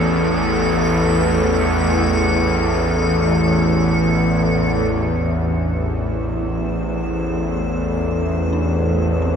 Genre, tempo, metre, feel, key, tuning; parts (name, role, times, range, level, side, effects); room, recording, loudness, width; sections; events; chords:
dark ambient drone; free time; A minor; A4 = 440 Hz
dark detuned synth bell; arpeggios; 0.0-9.4 s; C4 to A4; -35 LUFS; right 2 dB
bowed-like drone; drone; 0.0-9.4 s; A1 to E2; -17 LUFS; equal; built-in reverb
icy glass pad; texture; 0.0-9.4 s; A4 to C5; -24 LUFS; left 1 dB; chorus, built-in reverb
dark analog pad; sustained chords; 4.9-9.4 s; D4 to C5; -34 LUFS; left 1 dB
wet cathedral reverb, RT60 5.5 s; -16 LUFS; side -7 dB against mid
0.0-4.9 A section; 4.9-9.4 B section
0.0 Am